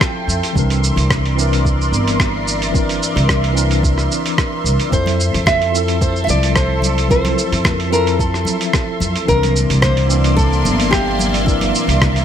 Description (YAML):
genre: sunset chillout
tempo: 110 BPM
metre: 4/4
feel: swing 54% on 16ths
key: F major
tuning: A4 = 445 Hz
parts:
  - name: nylon-string guitar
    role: melody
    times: 0.0-0.2, 4.9-12.2 s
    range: E4 to E5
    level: -20 LUFS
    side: left 1 dB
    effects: digital delay
  - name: tine electric piano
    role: accompaniment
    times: 0.0-12.2 s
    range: E3 to E5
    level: -22 LUFS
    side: left 1 dB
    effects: medium stereo tremolo, auto-pan, tape echo
  - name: lush unison pad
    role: sustained chords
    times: 0.0-12.2 s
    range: Bb3 to C6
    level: -22 LUFS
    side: right 1 dB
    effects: chorus, phaser
  - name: dusty soul sampler-style drum kit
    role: drums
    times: 0.0-12.2 s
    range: hi-hat, rim click, shaker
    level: -21 LUFS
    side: right 2 dB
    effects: none
  - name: electronic kick drum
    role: drums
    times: 0.0-12.1 s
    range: none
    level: -19 LUFS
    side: equal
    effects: none
  - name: upright bass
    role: bass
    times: 0.3-12.2 s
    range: G1 to F2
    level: -18 LUFS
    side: equal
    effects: tube saturation
  - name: congas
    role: percussion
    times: 5.1-12.1 s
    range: none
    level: -26 LUFS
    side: left 4 dB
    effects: none
room: light reverb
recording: none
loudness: -13 LUFS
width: side -9 dB against mid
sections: 0.0-12.2 A section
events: none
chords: 0.0 Fmaj7; 0.6 C9; 4.9 Fmaj7; 9.3 C9